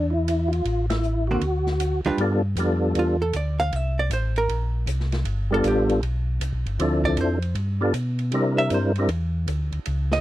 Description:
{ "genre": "soul jazz organ trio", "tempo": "156 BPM", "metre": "4/4", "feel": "swing 65% on 8ths", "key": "G mixolydian", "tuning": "A4 = 441 Hz", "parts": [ { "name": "percussive tonewheel organ", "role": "melody", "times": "0.0-3.2, 5.5-9.1 s", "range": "F3 to Bb4", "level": "-23 LUFS", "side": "left 1 dB", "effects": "chorus vibrato, fast rotary speaker" }, { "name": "mellow tonewheel organ", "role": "bass", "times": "0.0-10.2 s", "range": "G1 to C3", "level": "-24 LUFS", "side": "equal", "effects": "slow rotary speaker" }, { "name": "open jazz drum kit", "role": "drums", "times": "0.3-10.2 s", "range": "hi-hat, kick drum, ride cymbal, snare drum", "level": "-36 LUFS", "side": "right 1 dB", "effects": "none" }, { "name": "hollow-body jazz guitar", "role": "accompaniment", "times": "1.3-10.2 s", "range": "D3 to F5", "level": "-25 LUFS", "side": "right 3 dB", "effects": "none" } ], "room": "little or no reverb", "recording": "dry, close 1970s-style studio recording", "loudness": "-21 LUFS", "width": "side -15 dB against mid", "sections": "0.0-2.2 A section; 2.2-10.2 B section", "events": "band accent 0.9; hollow-body jazz guitar solo 2.2-10.2", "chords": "0.0 Dmadd9/E; 0.7 Am; 1.4 Dadd11; 2.2 G7; 3.7 Bbmaj7(b5, no3)/A; 5.3 G7; 6.8 Dm7; 7.6 G7; 8.3 C7" }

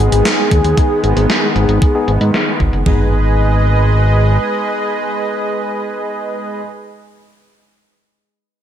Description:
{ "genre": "synthwave", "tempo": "115 BPM", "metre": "4/4", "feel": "straight", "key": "G# minor", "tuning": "A4 = 440 Hz", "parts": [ { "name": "wide unison lead", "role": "melody", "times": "0.0-2.3 s", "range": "G#4", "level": "-19 LUFS", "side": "equal", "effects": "ping-pong delay" }, { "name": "soft supersaw", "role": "sustained chords", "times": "0.0-6.6 s", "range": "D#3 to D#5", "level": "-19 LUFS", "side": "right 2 dB", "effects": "sidechain pumping" }, { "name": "tine electric piano", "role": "stabs", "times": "0.0-6.6 s", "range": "B3 to G#4", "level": "-23 LUFS", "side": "left 4 dB", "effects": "low-pass filter, tape echo" }, { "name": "fat analog bass", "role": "bass", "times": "0.0-4.4 s", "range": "F#1 to G#2", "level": "-13 LUFS", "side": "equal", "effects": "none" }, { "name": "gated 80s digital drum machine", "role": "drums", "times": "0.1-2.8 s", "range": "hi-hat, snare drum", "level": "-18 LUFS", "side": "right 1 dB", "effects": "gated reverb, gated reverb snare, overdrive, low-pass filter on snare, low-pass filter on hats, low-pass filter on perc, low-pass filter on room" }, { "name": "gated 80s digital drum machine", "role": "drums", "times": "0.5-3.0 s", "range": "kick drum, toms", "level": "-14 LUFS", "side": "right 1 dB", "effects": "gated reverb, overdrive" } ], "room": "light reverb, digital ambience", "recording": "none", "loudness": "-12 LUFS", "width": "side -10 dB against mid", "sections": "0.0-2.9 A section; 2.9-7.0 B section", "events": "filter sweep on tine electric piano 0.0-2.9", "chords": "0.0 G#m" }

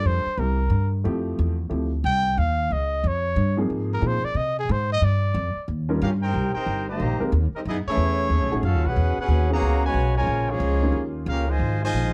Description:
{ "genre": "jazz, big band swing", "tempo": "182 BPM", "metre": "4/4", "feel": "swing 64% on 8ths", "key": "unclear", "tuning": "A4 = 440 Hz", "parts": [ { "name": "mellow trumpet", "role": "melody", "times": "0.0-5.7 s", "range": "Ab4 to G5", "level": "-28 LUFS", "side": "equal", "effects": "none" }, { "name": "warm baby grand piano", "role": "accompaniment", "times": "0.0-11.2 s", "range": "F3 to Bb4", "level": "-30 LUFS", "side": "equal", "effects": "none" }, { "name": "upright bass", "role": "bass", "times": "0.0-12.1 s", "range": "G1 to C3", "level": "-25 LUFS", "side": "equal", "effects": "none" }, { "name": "warm trumpet section", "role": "melody", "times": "6.0-12.1 s", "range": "A3 to Bb5", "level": "-29 LUFS", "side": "equal", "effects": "none" }, { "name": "mellow trombone section", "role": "second line", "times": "6.0-12.1 s", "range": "B2 to G4", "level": "-32 LUFS", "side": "equal", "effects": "none" } ], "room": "light reverb", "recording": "dark, warm production", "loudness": "-23 LUFS", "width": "mono", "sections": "0.0-6.3 A section; 6.3-12.1 B section", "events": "trumpet solo 0.0-6.3", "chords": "0.4 C7; 1.1 Fmaj7; 2.4 Eb7; 3.7 Ab6; 5.0 G5; 5.7 Eb7; 6.3 Abmaj9 (rootless); 7.7 Gbm9; 8.3 B13; 9.0 E69; 10.3 Bbm7; 10.9 Eb9; 11.6 Ab69" }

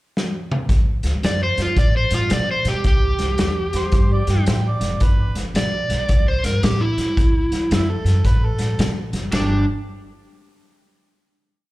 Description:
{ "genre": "electric blues shuffle", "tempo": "111 BPM", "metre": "4/4", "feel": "swing 64% on 8ths", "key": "G major", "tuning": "A4 = 441 Hz", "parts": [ { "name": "vintage drum kit", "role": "drums", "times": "0.2-9.5 s", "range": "hi-hat, kick drum, ride cymbal, snare drum, toms", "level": "-20 LUFS", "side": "equal", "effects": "none" }, { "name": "upright bass", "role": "bass", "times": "0.7-9.6 s", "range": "F1 to B2", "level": "-21 LUFS", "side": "equal", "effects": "none" }, { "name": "overdriven slide guitar", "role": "melody", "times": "1.3-9.6 s", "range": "D4 to D5", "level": "-22 LUFS", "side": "right 1 dB", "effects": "slapback echo" }, { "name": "overdriven harmonica", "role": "second line", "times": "3.8-9.6 s", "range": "A3 to G5", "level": "-30 LUFS", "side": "right 2 dB", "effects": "slapback echo" } ], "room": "small room ambience", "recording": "live gig heard through the venue's PA, club reverb", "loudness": "-17 LUFS", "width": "side -18 dB against mid", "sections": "0.0-0.7 pickup bar; 0.7-9.3 head; 9.3-11.5 final chord", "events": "drum fill 0.2-0.7", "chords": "0.0 N.C.; 0.7 D6; 2.9 C6; 5.0 G; 6.1 C6; 7.2 D69; 9.3 G5" }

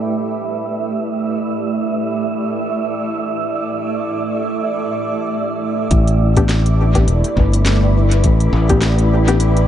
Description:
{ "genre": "ambient dub", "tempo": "103 BPM", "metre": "4/4", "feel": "swing 57% on 16ths", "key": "unclear", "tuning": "A4 = 440 Hz", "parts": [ { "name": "granular cloud pad", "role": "sustained chords", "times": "0.0-9.7 s", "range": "A3 to D5", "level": "-20 LUFS", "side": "right 1 dB", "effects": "built-in reverb" }, { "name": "wind-like tuned noise texture", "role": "texture", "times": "0.0-9.7 s", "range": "B4 to E5", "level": "-25 LUFS", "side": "right 4 dB", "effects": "built-in reverb" }, { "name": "modern bright fingered electric bass", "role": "bass", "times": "5.9-9.7 s", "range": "E1 to A1", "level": "-14 LUFS", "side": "equal", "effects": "none" }, { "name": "electronic kick drum", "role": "drums", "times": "5.9-8.8 s", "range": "none", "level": "-16 LUFS", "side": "equal", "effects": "none" }, { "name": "organic electronic drum kit", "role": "drums", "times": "5.9-9.7 s", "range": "hi-hat, snare drum", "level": "-25 LUFS", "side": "left 1 dB", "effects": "low-pass filter on snare, low-pass filter on hats, low-pass filter on room, dub echo" }, { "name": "filtered dub chord stab", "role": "stabs", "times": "6.4-9.4 s", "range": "B3 to G4", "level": "-22 LUFS", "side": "left 4 dB", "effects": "chorus, cassette tape, dub echo" } ], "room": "light reverb, digital ambience", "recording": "nothing above 10.4 kHz", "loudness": "-15 LUFS", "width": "side -10 dB against mid", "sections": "0.0-5.9 A section; 5.9-9.7 B section", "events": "none", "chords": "0.0 A9sus4" }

